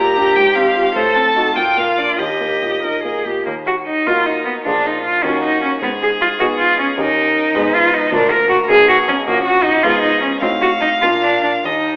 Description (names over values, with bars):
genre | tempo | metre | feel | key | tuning
quick classical-period movement for piano trio | 93-106 BPM (dotted quarters) | 6/8 | rubato | Eb major, Eb minor from 3.5 s | A4 = 440 Hz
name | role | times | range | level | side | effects
clear violin | melody | 0.0-12.0 s | Eb4 to Bb5 | -19 LUFS | equal | none
rich cello | second line | 0.0-12.0 s | Bb3 to Bb4 | -14 LUFS | equal | none
clear grand piano | accompaniment | 0.0-12.0 s | Bb1 to Bb4 | -20 LUFS | equal | none
room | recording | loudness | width
wet recital hall reverb, RT60 1.6 s | telephone sound | -12 LUFS | side -28 dB against mid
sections
0.0-3.5 A section; 3.5-12.0 B section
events
none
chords
0.4 Fm/Ab; 1.0 Adim7; 1.6 Bb; 2.2 Eb; 3.5 Ebm; 4.7 Bb5; 5.2 Ebm; 5.8 Abm; 7.0 Eb7; 7.5 Abm; 8.1 Bb/D; 8.7 Abm/Cb; 9.3 Gb/Bb; 9.8 Fdim/Ab; 10.4 Adim7; 11.0 Bb